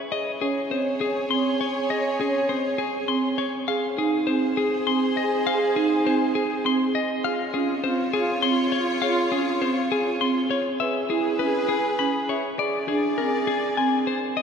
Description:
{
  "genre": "classical, minimalist pattern music",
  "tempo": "101 BPM",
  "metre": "3/4",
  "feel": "straight",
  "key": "unclear",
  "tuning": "A4 = 440 Hz",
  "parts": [
    { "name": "clean electric guitar", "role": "melody", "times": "0.1-14.4 s", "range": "Ab4 to C6", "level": "-27 LUFS", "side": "left 7 dB", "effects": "none" },
    { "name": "clear French horn", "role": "second line", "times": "0.1-14.4 s", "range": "F4 to Db5", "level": "-29 LUFS", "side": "right 1 dB", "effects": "none" },
    { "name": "clear symphonic string section", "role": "sustained chords", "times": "0.1-14.4 s", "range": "F4 to Eb5", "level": "-31 LUFS", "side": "left 1 dB", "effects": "none" },
    { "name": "marimba with soft mallets", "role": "arpeggios", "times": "0.1-14.3 s", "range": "C4 to E5", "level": "-25 LUFS", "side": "right 3 dB", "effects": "none" }
  ],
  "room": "wet cathedral reverb, RT60 4.4 s",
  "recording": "none",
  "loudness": "-21 LUFS",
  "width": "side -6 dB against mid",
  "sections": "0.0-14.4 A section",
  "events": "none",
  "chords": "0.1 Absus4; 3.7 Fm (rootless); 7.2 Db; 10.8 E; 12.6 Bb7 (rootless)"
}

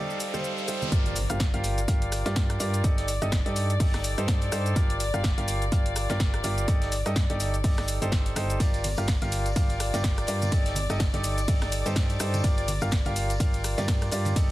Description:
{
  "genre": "piano house",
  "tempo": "125 BPM",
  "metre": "4/4",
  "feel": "swing 57% on 16ths",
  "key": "G minor",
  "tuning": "A4 = 440 Hz",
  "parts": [
    { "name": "dark chamber string section", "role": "sustained chords", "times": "0.0-14.5 s", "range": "D5 to F5", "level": "-36 LUFS", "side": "left 3 dB", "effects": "sidechain pumping" },
    { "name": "clear grand piano", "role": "riff", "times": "0.0-14.5 s", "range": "G3 to F5", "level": "-32 LUFS", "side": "right 1 dB", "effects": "sidechain pumping, digital delay" },
    { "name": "riser and impact", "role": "sound effects", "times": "0.0-2.8 s", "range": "none", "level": "-35 LUFS", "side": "equal", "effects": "none" },
    { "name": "granular cloud pad", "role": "texture", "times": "0.0-0.9 s", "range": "G4 to A5", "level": "-42 LUFS", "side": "right 2 dB", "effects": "none" },
    { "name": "punchy analog drum machine", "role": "drums", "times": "0.1-14.5 s", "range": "hi-hat, ride cymbal, rim click, shaker, snare drum", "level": "-33 LUFS", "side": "equal", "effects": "none" },
    { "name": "tambourine and congas", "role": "percussion", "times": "0.1-0.9, 8.6-14.5 s", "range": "none", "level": "-38 LUFS", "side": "right 2 dB", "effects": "none" },
    { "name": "solid FM bass", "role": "bass", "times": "0.9-14.5 s", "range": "G1 to G2", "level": "-29 LUFS", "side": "equal", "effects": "sidechain pumping" },
    { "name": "electronic kick drum", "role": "drums", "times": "0.9-14.5 s", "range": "none", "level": "-25 LUFS", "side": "equal", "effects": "overdrive" },
    { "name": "vintage drum kit", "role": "drums", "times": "0.9-14.5 s", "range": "hi-hat, snare drum", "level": "-44 LUFS", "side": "equal", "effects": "none" }
  ],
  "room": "small room ambience",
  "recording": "dense, heavily limited modern master",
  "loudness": "-24 LUFS",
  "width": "side -16 dB against mid",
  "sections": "0.9-14.5 A section",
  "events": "riser 0.0-0.9; drop 0.9-14.5; impact 0.9-2.8",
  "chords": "0.0 F13/G; 0.9 Gm7; 2.8 Ebmaj7#11/G; 3.6 Am7b5/G; 4.8 Gm7; 6.7 Ebmaj7#11/G; 7.4 Am7b5/G; 8.6 Gm7; 10.5 Ebmaj7#11/G; 11.2 Am7b5/G; 12.4 Gm7"
}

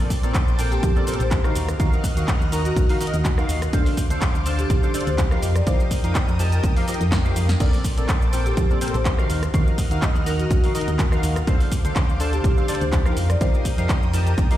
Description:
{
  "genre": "piano house",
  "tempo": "124 BPM",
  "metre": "4/4",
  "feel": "swing 54% on 16ths",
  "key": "Bb major",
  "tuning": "A4 = 440 Hz",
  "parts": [
    { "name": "analog string pad", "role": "sustained chords", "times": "0.0-14.6 s", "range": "Bb4 to F6", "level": "-34 LUFS", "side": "left 1 dB", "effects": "ensemble chorus, sidechain pumping" },
    { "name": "percussive organ stab", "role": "riff", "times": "0.0-14.6 s", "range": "Bb2 to Bb5", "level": "-27 LUFS", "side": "equal", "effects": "ensemble chorus, cassette tape, sidechain pumping, ping-pong delay" },
    { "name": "electronic kick drum", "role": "drums", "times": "0.1-14.5 s", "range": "none", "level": "-20 LUFS", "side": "equal", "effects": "none" },
    { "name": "punchy analog drum machine", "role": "drums", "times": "0.1-14.6 s", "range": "crash cymbal, handclaps, hi-hat, rim click, shaker, snare drum", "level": "-30 LUFS", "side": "equal", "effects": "none" },
    { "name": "solid FM bass", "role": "bass", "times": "0.2-14.5 s", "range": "A1 to F2", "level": "-22 LUFS", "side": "equal", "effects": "sidechain pumping" },
    { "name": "marimba with soft mallets", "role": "melody", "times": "0.7-14.1 s", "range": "Gb4 to D5", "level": "-30 LUFS", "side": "left 2 dB", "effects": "ping-pong delay" }
  ],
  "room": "digital ambience",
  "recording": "played on a big sound system in a bare room, large studio reverb",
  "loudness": "-18 LUFS",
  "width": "side -13 dB against mid",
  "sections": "0.0-14.6 A section",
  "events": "drum fill 7.1-7.6",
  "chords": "0.0 Bbmaj9; 1.6 Ebmadd9; 3.7 Dm7; 5.4 F9sus4; 7.6 Bbmaj9; 9.3 Ebmadd9; 11.5 Dm7; 13.2 F9sus4"
}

